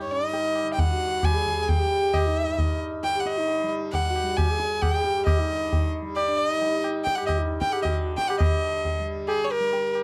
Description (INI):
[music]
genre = indian classical, Hindustani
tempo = 134 BPM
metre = 7/4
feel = straight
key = G raga todi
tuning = A4 = 444 Hz
[part]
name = clear violin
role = melody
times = 0.0-10.0 s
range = Ab4 to Ab5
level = -28 LUFS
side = equal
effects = none
[part]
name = tanpura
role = drone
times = 0.0-10.0 s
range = G2 to G3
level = -38 LUFS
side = equal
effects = none
[part]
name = dark sarangi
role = second line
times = 0.1-8.5 s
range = C#4 to Ab4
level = -32 LUFS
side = equal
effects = none
[part]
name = tabla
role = percussion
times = 0.3-10.0 s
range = none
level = -29 LUFS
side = equal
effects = none
[sound]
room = studio reverb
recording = dry, close 1970s-style studio recording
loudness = -25 LUFS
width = mono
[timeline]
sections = 0.0-8.4 A section; 8.4-10.0 B section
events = none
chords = none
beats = 0.34 0.79 1.24 1.69 | 2.14 2.59 3.04 3.48 3.93 4.38 4.83 | 5.28 5.72 6.17 6.62 7.06 7.51 7.95 | 8.40 8.84 9.29 9.73